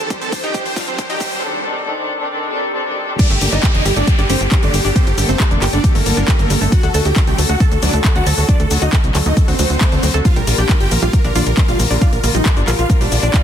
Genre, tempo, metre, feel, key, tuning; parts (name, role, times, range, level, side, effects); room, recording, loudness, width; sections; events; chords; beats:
uplifting trance; 136 BPM; 4/4; straight; G minor; A4 = 439 Hz
supersaw chords; melody; 0.0-13.4 s; Bb3 to A5; -21 LUFS; right 1 dB; phaser, sidechain pumping, digital delay
muted studio string section; sustained chords; 0.0-13.4 s; D3 to A4; -24 LUFS; left 1 dB; sidechain pumping
riser, swell and downlifter; sound effects; 0.0-6.7 s; -26 LUFS; equal
analog pluck; arpeggios; 0.1-13.4 s; F3 to A4; -25 LUFS; right 2 dB; chorus, sidechain pumping, tape echo
electronic kick drum; drums; 0.1-13.4 s; -14 LUFS; equal; overdrive, small room ambience
house drum kit; drums; 0.1-13.4 s; crash cymbal, handclaps, hi-hat, shaker; -22 LUFS; left 2 dB; overdrive, sidechain pumping on hats, high-pass filter on hats, small room ambience, sidechain pumping on perc, high-pass filter on perc, sidechain pumping on cymbals, high-pass filter on cymbals, high-pass filter on snare
tight sequencer bass; bass; 3.3-13.3 s; F1 to D2; -17 LUFS; equal; sidechain pumping
digital ambience; dense, heavily limited modern master, high-pass filter; -13 LUFS; side -9 dB against mid
0.0-3.2 A section; 3.2-13.4 B section
build-up 0.0-3.2; drum fill 0.0-1.4; riser 0.0-1.4; swell 2.4-3.2; drop 3.2-13.4
0.0 Cmadd9; 3.2 Gmadd9; 6.7 D; 10.3 Bb6
0.10 0.55 0.99 | 1.43 1.87 2.31 2.75 | 3.19 3.63 4.08 4.52 | 4.96 5.40 5.84 6.28 | 6.72 7.16 7.60 8.04 | 8.49 8.93 9.37 9.81 | 10.25 10.69 11.13 11.57 | 12.02 12.46 12.90 13.34